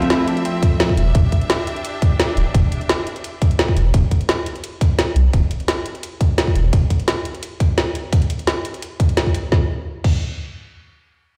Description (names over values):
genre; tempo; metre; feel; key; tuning
liquid drum and bass; 172 BPM; 4/4; straight; unclear; A4 = 441 Hz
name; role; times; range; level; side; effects
vintage hollow-body jazz guitar; accompaniment; 0.0-1.0 s; F3 to E5; -24 LUFS; equal; vintage 12-bit sampler grit, tape echo
bright studio string section; sustained chords; 0.0-3.9 s; F3 to E5; -30 LUFS; equal; sidechain pumping
semi-hollow electric guitar; arpeggios; 0.0-0.6 s; C4 to E4; -31 LUFS; equal; low-pass filter, digital delay
drum and bass drum kit; drums; 0.0-10.2 s; crash cymbal, hi-hat, snare drum; -24 LUFS; equal; none
electronic kick drum; drums; 0.6-10.2 s; none; -18 LUFS; equal; none
saturated sub bass; bass; 1.0-6.7 s; D1 to C2; -19 LUFS; equal; none
room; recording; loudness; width
light reverb; played on a big sound system in a bare room, stone room reverb; -19 LUFS; mono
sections
0.0-9.5 A section; 9.5-11.4 B section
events
none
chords
0.0 Dm9; 1.0 Dsus24; 3.9 Csus2/D; 6.6 N.C.